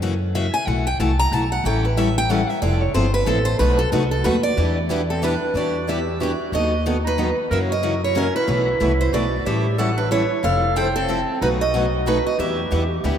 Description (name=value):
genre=acoustic string swing (jazz manouche)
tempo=184 BPM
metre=3/4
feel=swing 59% on 8ths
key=unclear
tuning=A4 = 440 Hz
part: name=picked steel-string acoustic guitar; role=accompaniment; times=0.0-13.2 s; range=B2 to A4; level=-25 LUFS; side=left 4 dB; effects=none
part: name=upright bass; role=bass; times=0.0-13.2 s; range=F1 to F#2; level=-23 LUFS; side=equal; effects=none
part: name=picked steel-string acoustic guitar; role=melody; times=0.4-13.2 s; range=F#4 to A#5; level=-22 LUFS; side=right 1 dB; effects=none
part: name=picked steel-string acoustic guitar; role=accompaniment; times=1.6-13.2 s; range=B2 to B4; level=-28 LUFS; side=right 4 dB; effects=none
part: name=clear clarinet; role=second line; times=5.1-13.2 s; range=C4 to C5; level=-27 LUFS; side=right 2 dB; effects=tape echo
room=wet cathedral reverb, RT60 4.8 s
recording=in a vast, echoing space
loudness=-18 LUFS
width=side -8 dB against mid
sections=0.0-5.5 A section; 5.5-13.2 B section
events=steel-string acoustic guitar solo 0.0-5.5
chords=0.0 F#7; 0.7 B7sus4; 1.6 A7; 2.6 Fmaj7; 3.6 B7; 4.6 Em7; 6.5 B7/D#; 7.5 F#7; 8.5 B7sus4; 9.5 A7; 10.4 Fmaj7; 11.4 B7; 12.4 Em7